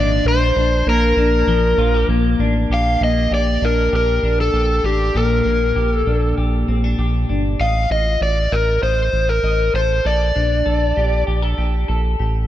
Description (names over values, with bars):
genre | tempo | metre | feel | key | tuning
dream pop | 98 BPM | 4/4 | straight | Bb major | A4 = 440 Hz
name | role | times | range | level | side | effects
overdriven slide guitar | melody | 0.0-11.2 s | G4 to F5 | -19 LUFS | left 1 dB | ping-pong delay
clean electric guitar | arpeggios | 0.0-12.5 s | Bb2 to Eb5 | -22 LUFS | left 2 dB | analog chorus, ping-pong delay
round analog bass | bass | 0.0-12.5 s | G1 to Bb1 | -18 LUFS | right 1 dB | none
room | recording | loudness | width
light reverb | dark, warm production | -15 LUFS | side -12 dB against mid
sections
0.0-2.7 A section; 2.7-12.5 B section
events
none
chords
0.3 Bb6; 7.6 F7/A; 10.0 Gmadd9/Bb